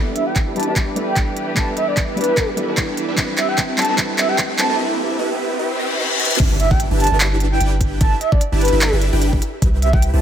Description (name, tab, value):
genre	future bass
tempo	149 BPM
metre	4/4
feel	swing 55% on 16ths, half-time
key	G major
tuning	A4 = 438 Hz
part	dark concert grand piano	accompaniment	0.0-6.4 s	G3 to B4	-27 LUFS	left 1 dB	sidechain pumping, dub echo
part	muted studio string section	sustained chords	0.0-4.8 s	E3 to B4	-32 LUFS	equal	sidechain pumping
part	supersaw chords	riff	0.0-10.2 s	C4 to A5	-23 LUFS	right 1 dB	phaser, sidechain pumping, low-pass filter
part	long sustained 808-style bass	bass	0.0-10.2 s	G1 to C2	-18 LUFS	equal	sidechain pumping, high-pass filter
part	riser, reverse cymbal and impact	sound effects	0.0-8.0 s	none	-26 LUFS	left 2 dB	none
part	breathy flute-like synth lead	melody	0.2-10.0 s	B4 to A5	-22 LUFS	right 1 dB	analog chorus, sidechain pumping, tape echo
part	trap drum kit	drums	0.2-10.1 s	crash cymbal, handclaps, hi-hat	-22 LUFS	equal	overdrive
part	electronic kick drum	drums	0.4-10.0 s	none	-18 LUFS	equal	overdrive
room	moderate lush hall reverb, RT60 1.9 s, digital ambience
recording	high-pass filter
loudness	-15 LUFS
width	side -9 dB against mid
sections	0.0-6.4 A section; 6.4-10.2 B section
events	build-up 0.0-6.4; drum fill 0.0-4.8, 6.2; riser 0.0-6.4; filter sweep on supersaw synth 0.0-6.4; filter sweep on soft synth lead 0.0-6.4; filter sweep 0.0-6.4; reverse cymbal 5.6-6.4; drop 6.4-10.2; impact 6.4-8.0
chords	0.0 G6; 3.2 Cmaj7; 6.4 G6; 9.6 Cmaj7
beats	0.36 0.76 1.16 | 1.57 1.97 2.37 2.77 | 3.18 3.58 3.98 4.38 | 4.79 5.19 5.59 6.00 | 6.40 6.80 7.20 7.61 | 8.01 8.41 8.81 9.22 | 9.62 10.02